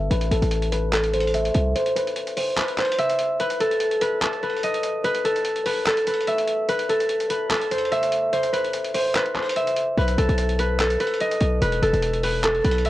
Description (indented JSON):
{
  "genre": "hip hop, trap",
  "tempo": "146 BPM",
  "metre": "4/4",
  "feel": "half-time",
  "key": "unclear",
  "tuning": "A4 = 440 Hz",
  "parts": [
    { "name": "concert harp", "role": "melody", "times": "0.0-12.9 s", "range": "A4 to E5", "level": "-22 LUFS", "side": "equal", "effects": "low-pass filter" },
    { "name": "hard-hitting 808-style bass", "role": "bass", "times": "0.0-1.7, 10.0-12.9 s", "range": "E1 to C2", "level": "-22 LUFS", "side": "equal", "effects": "none" },
    { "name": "boom bap sampler-style drum kit", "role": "drums", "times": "0.1-12.9 s", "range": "handclaps, hi-hat", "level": "-29 LUFS", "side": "equal", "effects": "none" }
  ],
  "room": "moderate digital room reverb, RT60 1.1 s",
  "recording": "worn, warbling old tape, cassette tape, warbly pitch drift",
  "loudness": "-20 LUFS",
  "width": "side -15 dB against mid",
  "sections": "0.0-12.9 A section",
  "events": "filter sweep on harp 0.0-3.4; kick muted 1.8-3.4, 3.4-10.0",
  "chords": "0.1 Am; 1.8 N.C.; 10.0 B; 11.6 E5"
}